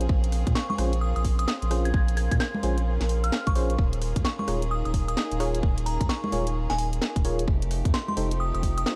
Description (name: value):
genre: UK garage, two-step garage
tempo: 130 BPM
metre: 4/4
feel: swing 63% on 16ths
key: Bb dorian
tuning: A4 = 440 Hz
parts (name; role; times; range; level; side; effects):
- bright studio violin section; sustained chords; 0.0-9.0 s; A3 to Ab4; -42 LUFS; equal; sidechain pumping
- FM electric piano; stabs; 0.0-8.3 s; Db4 to Db5; -35 LUFS; equal; chorus, tremolo
- saturated sub bass; bass; 0.0-8.8 s; Eb1 to Bb2; -29 LUFS; equal; none
- garage drum kit; drums; 0.0-9.0 s; congas, hi-hat, rim click, snare drum; -34 LUFS; equal; small room ambience
- warbly tape-like pad; texture; 0.0-9.0 s; Eb4 to Db6; -40 LUFS; equal; chorus, built-in reverb, sidechain pumping
- electronic kick drum; drums; 0.1-8.7 s; none; -27 LUFS; equal; small room ambience
- glassy synth bell; melody; 0.6-9.0 s; Ab5 to Ab6; -35 LUFS; equal; chorus, dub echo
room: little or no reverb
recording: dark, warm production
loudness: -26 LUFS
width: mono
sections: 0.0-9.0 A section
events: none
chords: 0.0 Bbm9; 3.8 Eb7sus4; 7.5 F7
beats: | 0.09 0.55 1.02 1.48 | 1.94 2.40 2.86 3.32 | 3.79 4.25 4.71 5.17 | 5.63 6.09 6.55 7.02 | 7.48 7.94 8.40 8.86